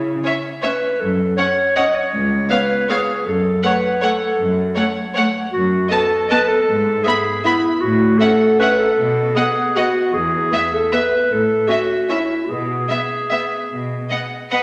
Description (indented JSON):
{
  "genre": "classical, orchestral ballroom waltz",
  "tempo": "141-171 BPM",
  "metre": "3/4",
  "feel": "rubato",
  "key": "E major from 5.5 s",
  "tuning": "A4 = 440 Hz",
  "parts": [
    { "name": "warm clarinet", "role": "second line", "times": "0.0-14.6 s", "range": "E4 to D#5", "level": "-20 LUFS", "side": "equal", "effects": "none" },
    { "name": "warm studio cello section", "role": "bass", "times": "0.0-14.0 s", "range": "C#2 to C#3", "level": "-25 LUFS", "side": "equal", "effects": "none" },
    { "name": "rich studio violin section", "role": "second line", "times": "0.2-14.6 s", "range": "C#5 to E5", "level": "-30 LUFS", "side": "equal", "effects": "none" },
    { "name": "rich studio viola section", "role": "accompaniment", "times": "0.2-14.6 s", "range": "A3 to C#4", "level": "-29 LUFS", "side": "equal", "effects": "none" },
    { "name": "clear studio violin section", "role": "melody", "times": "0.3-14.6 s", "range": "B4 to B5", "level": "-25 LUFS", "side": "equal", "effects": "none" }
  ],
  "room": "wet scoring stage reverb, RT60 1.5 s",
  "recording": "none",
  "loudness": "-18 LUFS",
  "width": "mono",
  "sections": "0.0-14.6 A section",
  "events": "none",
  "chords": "0.0 C#m; 1.0 F#m; 2.1 C#7(no3); 3.3 F#m; 5.5 B7(no3)/F#; 6.7 E/G#; 7.8 F#m/A; 9.0 B5; 10.1 E; 11.3 A; 12.5 E/B",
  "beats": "0.24 0.64 | 1.00 1.38 1.77 | 2.13 2.50 2.90 | 3.26 3.63 4.03 | 4.39 4.77 5.16 | 5.53 5.90 6.30 | 6.68 7.06 7.45 | 7.83 8.20 8.60 | 8.98 9.36 9.76 | 10.14 10.53 10.93 | 11.31 11.69 12.10 | 12.49 12.90 13.32 | 13.71 14.11 14.52"
}